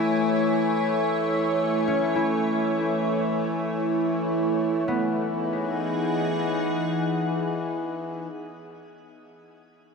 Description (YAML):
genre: ambient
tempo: free time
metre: none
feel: none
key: E major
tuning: A4 = 440 Hz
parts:
  - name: evolving wavetable pad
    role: sustained chords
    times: 0.0-8.2 s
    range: E3 to G#5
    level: -24 LUFS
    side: equal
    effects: chorus, built-in reverb, shimmer reverb
  - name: concert harp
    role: arpeggios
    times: 0.0-8.9 s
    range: B3 to A4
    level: -34 LUFS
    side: left 3 dB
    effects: ping-pong delay, shimmer reverb
  - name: hand-pumped harmonium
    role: drone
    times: 0.0-8.3 s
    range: E3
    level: -31 LUFS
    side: left 3 dB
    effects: none
room: wet lush hall reverb, RT60 2.9 s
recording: dreamy mix soaked in reverb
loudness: -23 LUFS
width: side -5 dB against mid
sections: 0.0-4.9 A section; 4.9-7.4 B section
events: none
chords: 0.0 Amaj7; 4.9 Emaj9